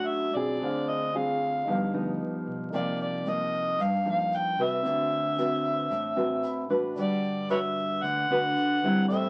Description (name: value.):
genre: bossa nova.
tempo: 113 BPM.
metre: 4/4.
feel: straight.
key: unclear.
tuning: A4 = 440 Hz.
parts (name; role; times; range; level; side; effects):
overdriven harmonica; melody; 0.0-9.3 s; B4 to G5; -31 LUFS; equal; none.
nylon-string guitar; accompaniment; 0.0-9.3 s; F#2 to B4; -31 LUFS; equal; none.
warm concert grand piano; accompaniment; 0.0-9.3 s; C4 to D6; -41 LUFS; equal; none.
fingered electric bass; bass; 0.0-9.3 s; G1 to G2; -45 LUFS; equal; none.
tube shaker; percussion; 2.7-9.3 s; none; -65 LUFS; equal; none.
room: moderate studio reverb, RT60 0.5 s.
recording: very old 78 rpm record, vinyl crackle.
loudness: -28 LUFS.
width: mono.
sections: 0.0-9.3 A section.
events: grand piano fill 5.9-7.0.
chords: 0.0 Bm7; 0.6 Dm7b5; 1.7 G7b13; 2.7 Cm11; 4.9 D13; 7.0 Gmaj7.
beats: 0.09 | 0.62 1.15 1.68 2.21 | 2.73 3.27 3.79 4.33 | 4.85 5.38 5.91 6.44 | 6.97 7.50 8.03 8.56 | 9.09.